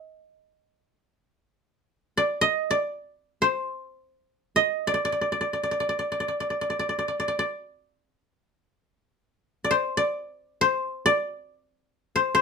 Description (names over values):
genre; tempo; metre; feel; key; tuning
japanese traditional, Japanese chamber music; free time; none; none; unclear; A4 = 440 Hz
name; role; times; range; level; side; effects
koto; solo; 0.0-12.4 s; C5 to Eb5; -23 LUFS; equal; none
room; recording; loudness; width
light reverb; close, detailed microphones; -24 LUFS; side -5 dB against mid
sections
0.0-12.4 A section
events
none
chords
none